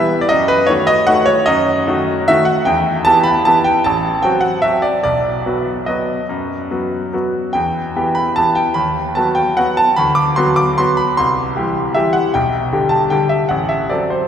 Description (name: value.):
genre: classical, piano waltz.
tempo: 138-159 BPM.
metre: 3/4.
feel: rubato.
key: unclear.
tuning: A4 = 440 Hz.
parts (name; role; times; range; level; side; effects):
bright grand piano; solo; 0.0-14.3 s; A1 to D6; -13 LUFS; equal; none.
room: wet cathedral reverb, RT60 5.3 s.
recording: recorded in a church or concert hall.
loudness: -13 LUFS.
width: side -8 dB against mid.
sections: 0.0-14.3 A section.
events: none.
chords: 0.3 D#dim/F#; 2.7 Em; 3.8 F#dim/A; 5.0 B; 7.5 Em; 8.8 B/D#; 10.0 Bm/D; 11.2 C; 12.3 G/B; 13.5 F#dim/A.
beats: | 0.30 0.69 1.09 | 1.48 1.88 2.27 | 2.66 3.05 3.44 | 3.83 4.22 4.63 | 5.03 5.44 5.87 | 6.29 6.70 7.13 | 7.55 7.94 8.36 | 8.76 9.15 9.56 | 9.97 10.36 10.77 | 11.17 11.56 11.95 | 12.33 12.72 13.12 | 13.50 13.90.